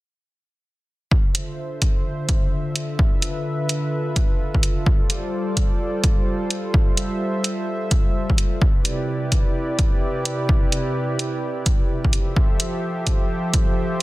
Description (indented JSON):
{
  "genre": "UK garage, two-step garage",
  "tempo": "128 BPM",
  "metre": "4/4",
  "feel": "swing 64% on 16ths",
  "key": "D dorian",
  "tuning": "A4 = 439 Hz",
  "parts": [
    { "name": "warm analog pad", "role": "sustained chords", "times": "1.1-14.0 s", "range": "C3 to E5", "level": "-25 LUFS", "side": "equal", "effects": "chorus, sidechain pumping" },
    { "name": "electronic kick drum", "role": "drums", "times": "1.1-13.7 s", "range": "none", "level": "-19 LUFS", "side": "equal", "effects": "none" },
    { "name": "electronic hi-hat", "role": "drums", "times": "1.3-14.0 s", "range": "none", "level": "-25 LUFS", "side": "right 1 dB", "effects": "none" }
  ],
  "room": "digital ambience",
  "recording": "dense, heavily limited modern master",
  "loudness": "-19 LUFS",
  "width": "side -18 dB against mid",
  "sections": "1.1-14.0 A section",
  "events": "none",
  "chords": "1.1 Dm9; 4.9 G9sus4; 8.6 Cmaj9; 12.1 Fmaj9",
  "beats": "| 1.11 1.58 2.05 2.52 | 2.99 3.46 3.93 4.40 | 4.87 5.33 5.80 6.27 | 6.74 7.21 7.68 8.15 | 8.62 9.08 9.55 10.02 | 10.49 10.96 11.43 11.90 | 12.37 12.83 13.30 13.77"
}